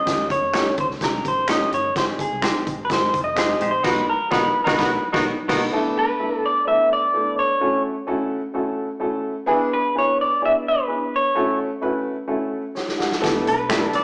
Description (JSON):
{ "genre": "uptempo 1960s-style soul", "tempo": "128 BPM", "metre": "4/4", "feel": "straight", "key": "E mixolydian from 5.7 s", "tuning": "A4 = 436 Hz", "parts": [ { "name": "electric guitar through a small old amp", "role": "melody", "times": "0.0-14.0 s", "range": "G4 to E5", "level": "-20 LUFS", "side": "equal", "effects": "spring reverb" }, { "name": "vintage muted fingered electric bass", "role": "bass", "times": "0.0-5.7, 13.2-14.0 s", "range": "F1 to F2", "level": "-38 LUFS", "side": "equal", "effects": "none" }, { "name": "dark upright piano", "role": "accompaniment", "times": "0.1-14.0 s", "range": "Ab3 to F#5", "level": "-24 LUFS", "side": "equal", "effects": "none" }, { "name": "swinging big-band drum kit", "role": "drums", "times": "0.1-5.6, 12.8-14.0 s", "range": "crash cymbal, hi-hat, kick drum, snare drum", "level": "-25 LUFS", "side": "equal", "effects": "none" }, { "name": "semi-hollow electric guitar", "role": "stabs", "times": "0.5-5.7, 13.7-13.8 s", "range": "F#3 to Db5", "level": "-26 LUFS", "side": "equal", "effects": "none" }, { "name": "finger snaps", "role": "percussion", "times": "0.5-3.5, 13.7-13.8 s", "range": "none", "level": "-30 LUFS", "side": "equal", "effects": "none" }, { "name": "clear saxophone section", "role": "second line", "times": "3.8-5.6, 13.7-14.0 s", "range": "B3 to A4", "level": "-25 LUFS", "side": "equal", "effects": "none" } ], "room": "wet large studio reverb, RT60 1.1 s", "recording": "band playing live in one room, small speaker sound", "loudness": "-18 LUFS", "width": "side -39 dB against mid", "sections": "0.0-5.7 A section; 5.7-14.0 B section", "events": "clean electric guitar solo 0.0-5.7; band accent 3.8-5.7; drum fill 12.8-13.2", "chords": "0.1 Eb7; 2.0 Abmaj7; 3.8 Bmaj7; 5.7 E7sus4; 7.6 F#m7; 9.5 E7; 11.4 A6; 13.2 E7sus4" }